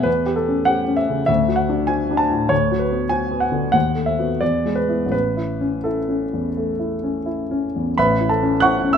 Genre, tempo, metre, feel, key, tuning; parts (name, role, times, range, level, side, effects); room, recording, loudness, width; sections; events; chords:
classical, romantic character piece for solo piano; 81-100 BPM; 4/4; rubato; A major; A4 = 442 Hz
warm baby grand piano; solo; 0.0-9.0 s; A1 to F#6; -17 LUFS; equal
light reverb; close, detailed microphones; -17 LUFS; side -7 dB against mid
0.0-8.0 A section; 8.0-9.0 A section
0.1 Em69; 1.3 D; 2.5 Bm/D; 3.8 B7/D#; 4.4 E7; 5.1 A